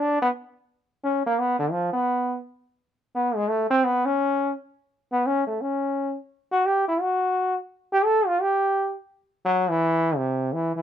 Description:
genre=jazz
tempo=171 BPM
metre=4/4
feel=swing 63% on 8ths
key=unclear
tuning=A4 = 440 Hz
part: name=bright trombone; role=solo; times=0.0-10.8 s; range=C3 to A4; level=-21 LUFS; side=equal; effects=none
room=light reverb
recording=close, detailed microphones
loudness=-22 LUFS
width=side -9 dB against mid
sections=0.0-9.8 A section; 9.8-10.8 B section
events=trombone solo 0.0-9.8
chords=none

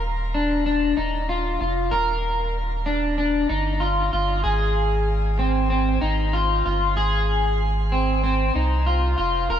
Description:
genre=dream pop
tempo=95 BPM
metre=4/4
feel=straight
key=unclear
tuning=A4 = 439 Hz
part: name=electric guitar at the edge of break-up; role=arpeggios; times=0.0-9.6 s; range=C4 to Bb4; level=-22 LUFS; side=left 1 dB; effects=lush chorus, digital delay
part: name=warm sub bass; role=bass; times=0.0-9.6 s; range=Eb1 to C2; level=-24 LUFS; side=equal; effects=none
room=light reverb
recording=dark, warm production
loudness=-20 LUFS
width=side -9 dB against mid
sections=0.0-9.6 A section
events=none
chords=0.0 Ebmaj7; 4.5 Ab6

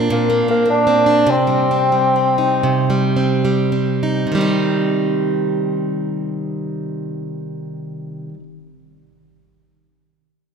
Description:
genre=celtic folk, Celtic slow air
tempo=50-81 BPM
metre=3/4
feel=rubato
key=C minor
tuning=A4 = 441 Hz
part: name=picked plugged-in steel-string acoustic guitar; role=accompaniment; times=0.0-8.4 s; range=Bb2 to Eb4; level=-18 LUFS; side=right 2 dB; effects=none
part: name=mellow bassoon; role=melody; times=0.1-3.2 s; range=Bb3 to D4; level=-16 LUFS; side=left 1 dB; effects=none
room=wet church reverb, RT60 2.7 s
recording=minimal, uncompressed stereo recording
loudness=-15 LUFS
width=side -6 dB against mid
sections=0.0-4.3 A section; 4.3-7.8 B section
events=slowing down 0.0-4.3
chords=0.0 Bbadd9; 1.3 Cm

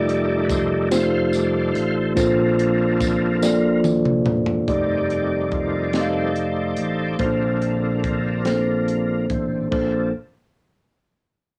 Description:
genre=slow gospel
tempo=48 BPM (dotted quarters)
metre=6/8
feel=straight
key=Bb major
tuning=A4 = 439 Hz
part: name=mellow tine electric piano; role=accompaniment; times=0.0-10.1 s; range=Bb1 to F5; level=-23 LUFS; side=equal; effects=cassette tape
part: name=overdriven tonewheel organ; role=sustained chords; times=0.0-10.1 s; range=D3 to F5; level=-29 LUFS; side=equal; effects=slow rotary speaker, chorus vibrato, cassette tape
part: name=modern bright fingered electric bass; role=bass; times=0.0-10.1 s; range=E1 to Bb1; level=-30 LUFS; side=equal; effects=tube saturation
part: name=crisp fusion drum kit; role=drums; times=0.1-9.9 s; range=crash cymbal, hi-hat, kick drum, snare drum, toms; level=-30 LUFS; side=equal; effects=cassette tape
part: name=tambourine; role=percussion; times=0.5-4.2 s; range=none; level=-37 LUFS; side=equal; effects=none
room=light reverb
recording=home recording on cassette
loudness=-21 LUFS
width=mono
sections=0.0-4.7 A section; 4.7-9.7 B section; 9.7-11.6 C section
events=tonewheel organ solo 0.0-4.7, 4.7-9.7; drum fill 3.4-4.7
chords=0.0 F13; 2.2 Bbmaj9; 4.7 F13; 7.2 Bbmaj9

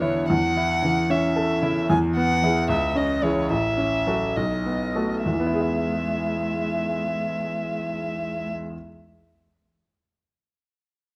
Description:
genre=quick classical-period movement for piano trio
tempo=66-76 BPM (dotted quarters)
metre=6/8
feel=rubato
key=E major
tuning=A4 = 443 Hz
part: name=muted violin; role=melody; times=0.0-8.5 s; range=C#5 to G#5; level=-29 LUFS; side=equal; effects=none
part: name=muted cello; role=second line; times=0.0-8.5 s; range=C#3 to A3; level=-35 LUFS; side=equal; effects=none
part: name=bright concert grand piano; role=accompaniment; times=0.0-8.9 s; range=A1 to E5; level=-26 LUFS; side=equal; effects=none
room=light reverb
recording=close, detailed microphones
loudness=-24 LUFS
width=mono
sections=0.0-5.2 A section; 5.2-8.7 B section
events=slowing down 1.1-5.2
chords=0.3 A/E; 1.9 E; 2.7 C#m; 3.5 F#m7/A; 4.4 B7; 5.2 E

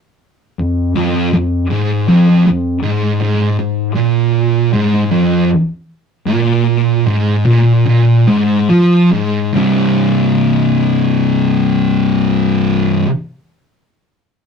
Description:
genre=metal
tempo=70-80 BPM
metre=4/4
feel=straight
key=unclear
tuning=A4 = 440 Hz
part: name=thick fuzz guitar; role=solo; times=0.6-13.1 s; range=C2 to F3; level=-11 LUFS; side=equal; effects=distortion
room=wet studio ambience, RT60 0.5 s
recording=rough rehearsal-room recording, tube saturation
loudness=-11 LUFS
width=side -6 dB against mid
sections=0.0-9.5 A section; 9.5-13.0 B section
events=slowing down 3.2-9.5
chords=0.0 Ebsus4 (rootless); 3.2 Fmadd11; 9.5 C5

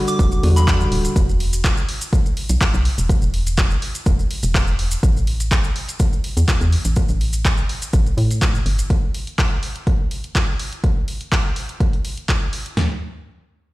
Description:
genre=deep house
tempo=124 BPM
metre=4/4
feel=swing 53% on 16ths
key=unclear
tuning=A4 = 440 Hz
part: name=bell-like tine electric piano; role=stabs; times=0.0-1.1 s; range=D3 to F#4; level=-22 LUFS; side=equal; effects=vintage 12-bit sampler grit, sidechain pumping, digital delay
part: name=soft synth bell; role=melody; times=0.1-0.8 s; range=B5 to D6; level=-27 LUFS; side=left 1 dB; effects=chorus, phaser, vintage 12-bit sampler grit, ping-pong delay
part: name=punchy analog drum machine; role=drums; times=0.1-12.7 s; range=handclaps, hi-hat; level=-26 LUFS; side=equal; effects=overdrive
part: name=maracas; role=percussion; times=0.1-8.9 s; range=none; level=-31 LUFS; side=equal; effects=none
part: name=organ-like FM bass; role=bass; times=0.2-8.8 s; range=D1 to A2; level=-19 LUFS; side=equal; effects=tube saturation, sidechain pumping
part: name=deep house drum kit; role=drums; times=0.2-12.9 s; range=kick drum, snare drum, toms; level=-18 LUFS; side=equal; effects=none
room=digital ambience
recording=played on a big sound system in a bare room, stone room reverb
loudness=-17 LUFS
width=side -19 dB against mid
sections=0.0-12.8 A section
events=none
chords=0.0 Em9; 5.0 A5; 12.8 N.C.

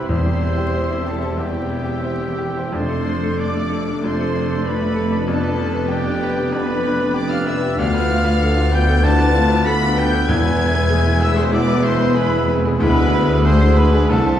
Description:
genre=classical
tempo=95 BPM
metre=4/4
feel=rubato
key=unclear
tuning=A4 = 440 Hz
part: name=bright baby grand piano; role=melody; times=0.0-14.4 s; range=C2 to C5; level=-21 LUFS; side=left 1 dB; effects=none
part: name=rich chamber violin section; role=melody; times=0.0-14.4 s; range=G5 to B6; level=-32 LUFS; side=left 3 dB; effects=none
part: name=bright concert flute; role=second line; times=0.0-14.4 s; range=G5 to B6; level=-29 LUFS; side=left 1 dB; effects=none
part: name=clear clarinet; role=second line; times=0.0-14.4 s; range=G4 to B4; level=-31 LUFS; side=left 2 dB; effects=none
part: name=warm chamber violin section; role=second line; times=0.0-14.4 s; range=G4 to B5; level=-30 LUFS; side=left 4 dB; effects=none
part: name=warm oboe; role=second line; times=0.0-14.4 s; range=D5 to E5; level=-31 LUFS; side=right 2 dB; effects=none
part: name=warm chamber viola section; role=accompaniment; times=0.0-14.4 s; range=G#3 to F4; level=-25 LUFS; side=equal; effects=none
part: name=bright trumpet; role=stabs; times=0.0-14.4 s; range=G4 to B5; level=-27 LUFS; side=equal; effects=none
part: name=clear chamber double bass section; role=bass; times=0.0-14.4 s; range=E1 to D2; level=-23 LUFS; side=equal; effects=none
part: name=rich chamber cello section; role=bass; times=0.0-14.4 s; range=C2 to F2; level=-26 LUFS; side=equal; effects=none
part: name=warm tuba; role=bass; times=0.0-14.4 s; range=E1 to D2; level=-26 LUFS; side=right 2 dB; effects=none
part: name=dark French horn section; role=sustained chords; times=0.1-14.3 s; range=G3 to E4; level=-26 LUFS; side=left 2 dB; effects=none
part: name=timpani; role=percussion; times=0.1-1.0, 10.3-11.2 s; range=E2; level=-23 LUFS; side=equal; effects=none
room=wet recital hall reverb, RT60 1.4 s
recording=heard from further back in the room, vinyl crackle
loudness=-15 LUFS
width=side -10 dB against mid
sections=0.0-14.4 A section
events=none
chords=0.1 C/E; 2.7 Dm7/F; 5.3 G7/F; 7.8 Bm7b5/D; 10.3 E; 12.8 E7/D

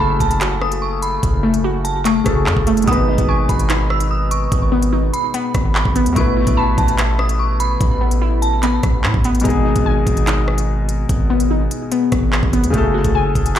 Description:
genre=hip hop, drill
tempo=146 BPM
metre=4/4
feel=half-time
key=G# phrygian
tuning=A4 = 440 Hz
part: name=dark detuned synth bell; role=second line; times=0.0-9.0 s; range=A5 to E6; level=-23 LUFS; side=right 2 dB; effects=chorus, phaser, tape echo
part: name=felt-muted upright piano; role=accompaniment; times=0.0-13.6 s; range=B2 to B4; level=-22 LUFS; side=left 4 dB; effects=low-pass filter
part: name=warbly dusty pluck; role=arpeggios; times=0.0-13.6 s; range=A3 to A5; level=-21 LUFS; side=left 2 dB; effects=chorus, phaser, low-pass filter, tape echo
part: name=distorted 808-style bass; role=bass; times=0.0-13.6 s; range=F#1 to A2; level=-19 LUFS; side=equal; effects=distortion
part: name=drill drum kit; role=drums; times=0.2-13.6 s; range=handclaps, hi-hat, kick drum, rim click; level=-20 LUFS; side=equal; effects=none
room=digital ambience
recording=played on a big sound system in a bare room, large studio reverb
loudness=-14 LUFS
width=side -10 dB against mid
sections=0.0-9.4 A section; 9.4-13.6 A section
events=none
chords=0.0 F#madd9; 2.9 G#m; 6.2 Asus2; 9.4 G#m; 12.7 F#madd9

